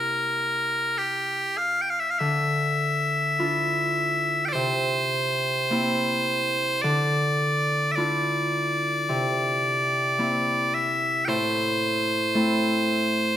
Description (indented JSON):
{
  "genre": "celtic folk, Celtic slow air",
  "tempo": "49-56 BPM",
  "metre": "4/4",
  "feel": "rubato",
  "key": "D minor",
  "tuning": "A4 = 439 Hz",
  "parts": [
    { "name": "loud bright bagpipes", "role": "melody", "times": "0.0-13.4 s", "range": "G4 to G5", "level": "-23 LUFS", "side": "equal", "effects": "none" },
    { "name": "Celtic harp", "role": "accompaniment", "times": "0.0-13.4 s", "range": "A2 to F4", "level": "-27 LUFS", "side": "equal", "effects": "none" }
  ],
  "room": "moderate recital hall reverb, RT60 1.7 s",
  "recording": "recorded in a church or concert hall",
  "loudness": "-22 LUFS",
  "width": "side -10 dB against mid",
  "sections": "0.0-13.4 A section",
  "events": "none",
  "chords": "0.0 C7; 2.2 Dmadd9; 4.6 C7; 6.8 Dmadd9; 9.1 C7; 11.3 Am",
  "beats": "0.99 | 2.20 3.38 4.56 5.71 | 6.84 7.98 9.11 10.20 | 11.29 12.37"
}